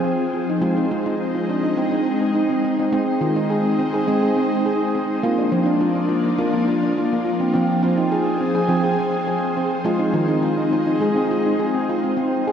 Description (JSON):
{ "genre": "world meditative, meditative tuned percussion", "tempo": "104 BPM", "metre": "4/4", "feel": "straight", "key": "Ab lydian", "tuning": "A4 = 440 Hz", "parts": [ { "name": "ethereal airy pad", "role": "sustained chords", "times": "0.0-12.5 s", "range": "F3 to Ab4", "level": "-22 LUFS", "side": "left 2 dB", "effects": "ensemble chorus, built-in reverb, shimmer reverb" }, { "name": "handpan", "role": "arpeggios", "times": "0.0-12.5 s", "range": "Eb3 to Ab4", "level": "-20 LUFS", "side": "right 1 dB", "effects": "shimmer reverb" } ], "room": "wet lush hall reverb, RT60 2.8 s", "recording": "dreamy mix soaked in reverb", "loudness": "-18 LUFS", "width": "side -8 dB against mid", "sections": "0.0-2.9 A section; 2.9-12.2 B section", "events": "none", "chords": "0.0 Fm; 0.6 Ab; 5.2 Bb; 7.5 Fm; 9.9 Ab", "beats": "0.05 | 0.62 1.20 1.77 2.35 | 2.93 3.50 4.08 4.66 | 5.23 5.81 6.39 6.96 | 7.54 8.12 8.70 9.27 | 9.85 10.43 11.01 11.58 | 12.16" }